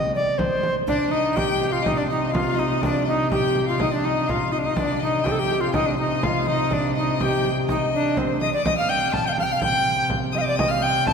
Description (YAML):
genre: medieval dance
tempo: 124 BPM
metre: 2/4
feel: straight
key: C dorian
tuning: A4 = 440 Hz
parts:
  - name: bright tenor recorder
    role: melody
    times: 0.0-11.1 s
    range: C4 to A5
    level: -22 LUFS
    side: equal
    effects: none
  - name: warm viola da gamba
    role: drone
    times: 0.0-11.1 s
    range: C3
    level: -28 LUFS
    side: right 1 dB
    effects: none
  - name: frame drum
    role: percussion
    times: 0.1-11.1 s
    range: none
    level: -27 LUFS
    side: right 1 dB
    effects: none
  - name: rich fiddle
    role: second line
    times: 0.9-11.1 s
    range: C5 to G6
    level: -26 LUFS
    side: left 5 dB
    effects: none
room: wet church reverb, RT60 3.0 s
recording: recorded in a church or concert hall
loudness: -20 LUFS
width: side -6 dB against mid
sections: 0.9-8.7 A section; 8.7-11.1 B section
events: none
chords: none